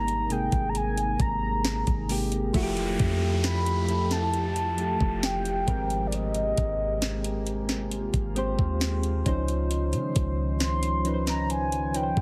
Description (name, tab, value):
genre	contemporary R&B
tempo	67 BPM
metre	4/4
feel	straight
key	unclear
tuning	A4 = 441 Hz
part	mellow horn-like synth lead	melody	0.0-12.2 s	D5 to C6	-32 LUFS	equal	chorus
part	soft electric-piano-like synth keys	accompaniment	0.0-12.2 s	C3 to C5	-33 LUFS	equal	chorus
part	glassy FM pad	sustained chords	0.0-12.2 s	C3 to C5	-38 LUFS	equal	ensemble chorus, built-in reverb
part	warm 808-style bass	bass	0.0-12.2 s	F1 to Db3	-32 LUFS	equal	none
part	trap drum kit	drums	0.1-12.2 s	hi-hat, kick drum, snare drum	-31 LUFS	equal	overdrive
part	downlifter	sound effects	2.5-9.7 s	none	-42 LUFS	equal	none
room	digital ambience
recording	heavily compressed radio sound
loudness	-27 LUFS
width	mono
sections	0.0-2.5 A section; 2.5-12.2 B section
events	none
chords	0.0 Abmaj9; 2.5 Fmaj9; 5.7 Abmaj9; 9.3 Dbmaj9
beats	0.75 1.65 | 2.54 3.44 4.33 5.23 | 6.12 7.02 7.92 8.81 | 9.71 10.60 11.50